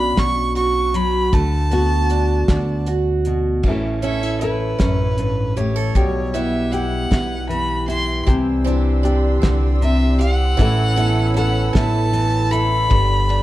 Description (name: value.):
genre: acoustic folk duo or small band.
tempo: 52 BPM (dotted quarters).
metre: 6/8.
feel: straight.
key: A mixolydian.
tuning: A4 = 439 Hz.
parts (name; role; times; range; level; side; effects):
rich fiddle; melody; 0.0-13.4 s; B4 to C#6; -23 LUFS; right 1 dB; plate reverb.
nylon-string guitar; accompaniment; 0.0-13.4 s; F#2 to A4; -22 LUFS; left 2 dB; none.
picked acoustic archtop guitar; arpeggios; 0.0-13.4 s; E3 to A4; -25 LUFS; right 5 dB; none.
upright bass; bass; 0.0-13.4 s; G1 to D2; -20 LUFS; equal; none.
cloth-damped thuddy drum kit; drums; 0.2-13.4 s; crash cymbal, hi-hat, kick drum, ride cymbal, snare drum; -19 LUFS; equal; none.
dark chamber string section; sustained chords; 8.3-13.4 s; G4 to E6; -30 LUFS; equal; none.
room: light reverb.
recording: dark, warm production.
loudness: -16 LUFS.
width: side -15 dB against mid.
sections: 0.0-3.6 A section; 3.6-12.9 B section.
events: fiddle solo 3.6-12.9.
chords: 0.0 Bmadd9; 1.3 D6; 3.6 A; 6.0 Em/B; 8.3 Cadd9; 10.6 Aadd9; 12.9 Gadd9.